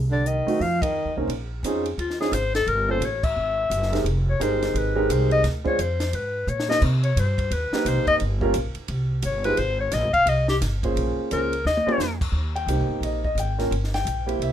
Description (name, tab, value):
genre	jazz, small-group swing and bop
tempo	174 BPM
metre	4/4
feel	swing 62% on 8ths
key	Ab major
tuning	A4 = 438 Hz
part	upright bass	bass	0.0-14.5 s	F1 to C3	-25 LUFS	equal	none
part	warm clarinet	melody	0.1-12.2 s	F4 to F5	-24 LUFS	left 3 dB	none
part	mellow baritone saxophone	second line	0.1-1.2 s	D3 to F3	-28 LUFS	right 3 dB	none
part	compact cocktail drum kit	drums	0.3-14.5 s	crash cymbal, hi-hat, kick drum, ride cymbal, snare drum, toms	-32 LUFS	equal	none
part	warm grand piano	accompaniment	0.5-14.5 s	Bb2 to G5	-25 LUFS	right 2 dB	none
room	moderate small room reverb, RT60 0.5 s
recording	minimal, uncompressed stereo recording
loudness	-21 LUFS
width	side -10 dB against mid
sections	0.0-1.3 A section; 1.3-12.3 B section; 12.3-14.5 C section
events	band accent 0.8, 3.2; drum fill 6.5-6.8, 11.6-12.0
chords	0.0 Cdim; 0.6 F5; 1.3 Bbm11; 2.7 Gm7b5; 3.4 C7alt; 4.1 Fm11; 5.4 Dm7b5; 6.1 Abmadd9; 6.8 Cm7; 8.2 Gm7b5; 8.9 C5; 9.6 Fmadd9; 11.0 Bbm7; 11.6 Eb13; 12.3 Abmaj9; 13.7 Gmadd11